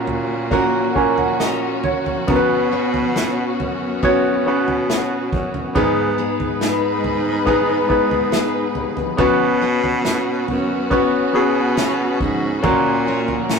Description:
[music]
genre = pop ballad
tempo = 70 BPM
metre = 4/4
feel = straight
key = unclear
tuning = A4 = 439 Hz
[part]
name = clear baby grand piano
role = accompaniment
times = 0.0-13.6 s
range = A#2 to G#5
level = -19 LUFS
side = equal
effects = none
[part]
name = warm studio string section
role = sustained chords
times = 0.0-13.6 s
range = G#3 to B4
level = -25 LUFS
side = left 3 dB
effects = none
[part]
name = picked steel-string acoustic guitar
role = arpeggios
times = 0.0-13.6 s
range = G#2 to B4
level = -25 LUFS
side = left 1 dB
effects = none
[part]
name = breathy baritone saxophone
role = bass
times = 0.0-13.6 s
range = D#2 to B2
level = -24 LUFS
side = right 1 dB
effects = none
[part]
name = unplugged drum kit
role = drums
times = 0.1-13.6 s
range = kick drum, snare drum, toms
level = -25 LUFS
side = right 1 dB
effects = none
[sound]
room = moderate studio reverb, RT60 0.5 s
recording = rough rehearsal-room recording, tube saturation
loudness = -16 LUFS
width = side -5 dB against mid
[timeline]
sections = 0.0-13.6 A section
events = grand piano fill 0.5-2.3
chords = 0.0 F#/A#; 2.3 Bsus2; 5.8 G#m; 9.2 Bsus2; 12.6 F#/A#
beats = 0.52 1.40 | 2.28 3.16 4.03 4.89 | 5.75 6.61 7.47 8.33 | 9.19 10.05 10.91 11.77 | 12.64 13.50

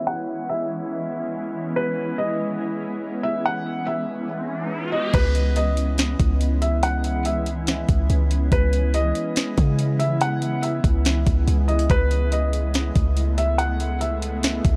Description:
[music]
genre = hip hop, atmospheric cloud-rap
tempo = 142 BPM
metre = 4/4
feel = half-time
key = C# minor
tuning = A4 = 440 Hz
[part]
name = felt-muted upright piano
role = melody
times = 0.0-14.8 s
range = B4 to F#5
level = -29 LUFS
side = equal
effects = low-pass filter, delay
[part]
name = shimmering ambient pad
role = sustained chords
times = 0.0-14.8 s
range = C#3 to E4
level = -30 LUFS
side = equal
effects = chorus, built-in reverb, sidechain pumping, low-pass filter
[part]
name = riser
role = sound effects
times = 4.2-5.1 s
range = none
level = -36 LUFS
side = equal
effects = none
[part]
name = warm 808-style bass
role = bass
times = 5.1-14.8 s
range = C#2 to C#3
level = -23 LUFS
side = equal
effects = none
[part]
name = trap drum kit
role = drums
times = 5.1-14.7 s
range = crash cymbal, hi-hat, kick drum, snare drum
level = -26 LUFS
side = equal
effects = none
[sound]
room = little or no reverb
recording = dark, warm production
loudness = -22 LUFS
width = mono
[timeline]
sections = 0.0-5.1 A section; 5.1-14.8 B section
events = filter sweep 0.0-5.1; riser 4.2-5.1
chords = 0.0 C#m9; 11.9 Amaj9/C#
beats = | 0.07 0.49 0.91 1.33 | 1.76 2.18 2.60 3.02 | 3.45 3.87 4.29 4.71 | 5.14 5.56 5.98 6.41 | 6.83 7.25 7.67 8.10 | 8.52 8.94 9.36 9.79 | 10.21 10.63 11.05 11.48 | 11.90 12.32 12.74 13.17 | 13.59 14.01 14.43

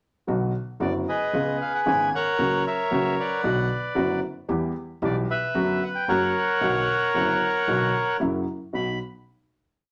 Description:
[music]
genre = tango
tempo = 114 BPM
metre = 4/4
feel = rubato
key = B harmonic minor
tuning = A4 = 441 Hz
[part]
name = warm baby grand piano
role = accompaniment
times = 0.3-9.0 s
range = F#1 to G4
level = -28 LUFS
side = equal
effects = none
[part]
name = upright bass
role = bass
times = 0.3-9.0 s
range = F#1 to E2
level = -36 LUFS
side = equal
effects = none
[part]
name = bandoneon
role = melody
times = 0.8-9.0 s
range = G#4 to B5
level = -26 LUFS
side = equal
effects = none
[sound]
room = wet studio reverb, RT60 0.6 s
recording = none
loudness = -25 LUFS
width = mono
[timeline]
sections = 0.3-8.7 A section; 8.7-9.9 final chord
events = none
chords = 0.3 Bm; 1.3 C#7; 2.4 F#/C#; 3.4 Bm; 4.5 Em; 5.5 Bm/F#; 6.1 F#; 6.6 Bm; 8.2 F#7; 8.7 B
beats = | 0.28 0.81 1.34 1.87 | 2.39 2.92 3.44 3.97 | 4.50 5.02 5.55 6.08 | 6.61 7.14 7.67 8.21 | 8.74

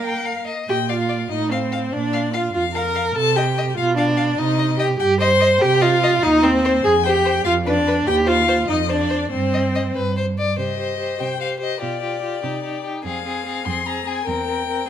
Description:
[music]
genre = quick classical-period movement for string quartet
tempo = 98 BPM (dotted quarters)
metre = 6/8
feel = straight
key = Bb major, C minor from 5.6 s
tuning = A4 = 440 Hz
[part]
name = rich violin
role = melody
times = 0.0-14.9 s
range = C5 to C6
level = -25 LUFS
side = left 10 dB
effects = none
[part]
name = rich violin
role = second line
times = 0.0-14.9 s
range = G4 to G5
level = -26 LUFS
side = left 4 dB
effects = none
[part]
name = warm viola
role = accompaniment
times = 0.0-14.9 s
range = Bb3 to C5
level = -20 LUFS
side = right 2 dB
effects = none
[part]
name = dark cello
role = bass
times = 0.0-14.8 s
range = Eb2 to Bb4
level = -25 LUFS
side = right 4 dB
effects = none
[sound]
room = moderate recital hall reverb, RT60 1.3 s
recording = close, detailed microphones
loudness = -17 LUFS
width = side -10 dB against mid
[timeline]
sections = 0.7-10.6 A section; 10.6-14.9 B section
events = none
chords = 0.0 Bb5; 0.7 Bb; 1.3 F/A; 1.9 Bb; 3.2 Cm; 3.8 Bdim; 4.4 Cm; 6.2 Cm/Eb; 6.8 Fmadd9; 7.5 Bdim/F; 8.1 Cm/Eb; 8.7 F5; 9.3 Cm/G; 9.9 G; 10.6 Cm; 11.8 G7/B; 12.4 Cm; 13.0 Fm; 14.3 C7/E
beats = 0.05 | 0.69 1.31 | 1.93 2.55 | 3.16 3.78 | 4.39 5.01 | 5.62 6.23 | 6.84 7.45 | 8.07 8.69 | 9.31 9.95 | 10.58 11.20 | 11.82 12.43 | 13.05 13.66 | 14.27 14.88

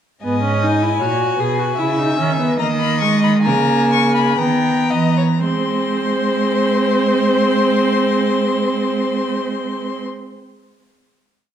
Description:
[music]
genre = classical, baroque-style fugue for string quartet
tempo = 54-80 BPM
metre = 3/4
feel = straight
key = unclear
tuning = A4 = 440 Hz
[part]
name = warm violin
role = melody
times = 0.2-10.0 s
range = G#5 to C#6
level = -22 LUFS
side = left 9 dB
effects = none
[part]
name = dark violin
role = second line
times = 0.2-10.0 s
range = B4 to G#5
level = -22 LUFS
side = left 3 dB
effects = none
[part]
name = warm viola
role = accompaniment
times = 0.2-10.0 s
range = G#3 to G#4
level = -19 LUFS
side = right 2 dB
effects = none
[part]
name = warm cello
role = bass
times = 0.2-10.0 s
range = G#2 to G#3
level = -20 LUFS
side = right 4 dB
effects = none
[sound]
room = wet recital hall reverb, RT60 1.4 s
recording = dark, warm production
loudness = -15 LUFS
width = side -9 dB against mid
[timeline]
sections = 0.2-5.4 exposition; 5.4-11.5 final chord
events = slowing down 0.2-7.1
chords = 0.2 G#m; 1.8 C#m; 2.6 D#7sus4; 4.4 D#; 5.4 G#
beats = | 0.24 1.00 1.78 | 2.59 3.45 4.39 | 5.44 6.54 7.66 | 8.76 9.87

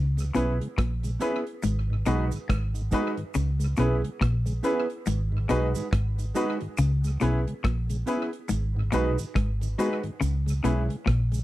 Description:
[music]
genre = roots reggae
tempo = 70 BPM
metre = 4/4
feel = swing 60% on 16ths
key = C# dorian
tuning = A4 = 441 Hz
[part]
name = semi-hollow electric guitar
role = riff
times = 0.0-11.3 s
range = G#2 to C#3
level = -29 LUFS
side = left 3 dB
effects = none
[part]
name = vintage muted fingered electric bass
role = bass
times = 0.0-11.4 s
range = G#1 to C#2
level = -26 LUFS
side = equal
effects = transformer saturation
[part]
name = mellow tonewheel organ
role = accompaniment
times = 0.2-11.4 s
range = G#2 to F#4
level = -34 LUFS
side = left 1 dB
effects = slow rotary speaker
[part]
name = cabasa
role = percussion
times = 0.2-11.4 s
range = none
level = -44 LUFS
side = right 10 dB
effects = none
[part]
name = mellow electric guitar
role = accompaniment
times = 0.3-10.9 s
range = G#3 to B4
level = -33 LUFS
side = right 4 dB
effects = lush chorus, dub echo
[part]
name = clear concert grand piano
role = stabs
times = 0.3-10.8 s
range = C#4 to B4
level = -29 LUFS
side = left 2 dB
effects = none
[part]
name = damped 70s drum kit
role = drums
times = 0.4-11.4 s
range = hi-hat, kick drum, rim click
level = -28 LUFS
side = equal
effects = tape echo
[sound]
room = light reverb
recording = dry, close 1970s-style studio recording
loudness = -24 LUFS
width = side -16 dB against mid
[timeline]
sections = 0.0-11.4 A section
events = none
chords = 0.0 C#m7; 1.6 G#m7; 3.4 C#m7; 5.1 G#m7; 6.8 C#m7; 8.5 G#m7; 10.2 C#m7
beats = 0.78 1.64 2.50 | 3.35 4.21 5.07 5.92 | 6.78 7.64 8.50 9.36 | 10.21 11.07

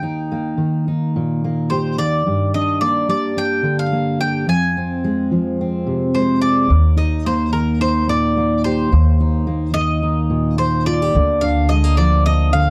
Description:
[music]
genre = indie folk with a building arrangement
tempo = 108 BPM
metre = 4/4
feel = straight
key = Eb major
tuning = A4 = 440 Hz
[part]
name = mandolin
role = melody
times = 0.0-12.7 s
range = Bb4 to Ab5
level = -23 LUFS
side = equal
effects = slapback echo
[part]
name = fingerpicked steel-string acoustic guitar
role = accompaniment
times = 0.0-12.7 s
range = Eb2 to Ab4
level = -21 LUFS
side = equal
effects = none
[part]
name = upright bass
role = bass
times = 6.7-12.7 s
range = D2 to Eb2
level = -20 LUFS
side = equal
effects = none
[sound]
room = little or no reverb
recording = dry, close 1970s-style studio recording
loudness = -18 LUFS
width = mono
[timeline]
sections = 0.0-6.7 A section; 6.7-12.7 A section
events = none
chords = 0.0 Eb; 2.3 Gm; 4.5 Fm; 6.7 Eb5; 11.1 Bb/D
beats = | 0.04 0.60 1.15 1.71 | 2.26 2.82 3.37 3.93 | 4.48 5.04 5.59 6.14 | 6.70 7.25 7.81 8.36 | 8.92 9.47 10.03 10.58 | 11.14 11.69 12.25

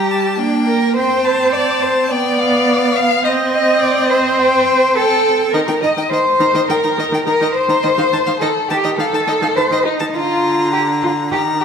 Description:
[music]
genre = quick classical-period movement for string quartet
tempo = 105 BPM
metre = 4/4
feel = rubato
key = Bb major from 5.5 s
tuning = A4 = 440 Hz
[part]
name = warm violin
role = melody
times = 0.0-11.6 s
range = D4 to F5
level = -20 LUFS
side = left 8 dB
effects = none
[part]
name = rich violin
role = second line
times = 0.0-11.6 s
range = Eb5 to Bb5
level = -22 LUFS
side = left 4 dB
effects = none
[part]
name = rich viola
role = accompaniment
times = 0.0-11.6 s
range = D3 to C4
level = -19 LUFS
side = right 2 dB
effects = none
[part]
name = rich cello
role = bass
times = 0.0-11.6 s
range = D4 to F5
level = -17 LUFS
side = right 3 dB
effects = none
[sound]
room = wet recital hall reverb, RT60 1.5 s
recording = none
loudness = -13 LUFS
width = side -7 dB against mid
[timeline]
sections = 0.0-11.6 A section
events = none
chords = 0.0 Gm; 1.0 C5; 2.1 G7/B; 3.2 Cm; 5.5 Cm7/Eb; 7.8 F7/Eb (rootless); 10.1 Bb/D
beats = 0.39 | 0.96 1.53 2.11 2.68 | 3.25 3.82 4.39 4.96 | 5.53 6.11 6.69 7.26 | 7.83 8.41 8.99 9.56 | 10.14 10.73 11.31

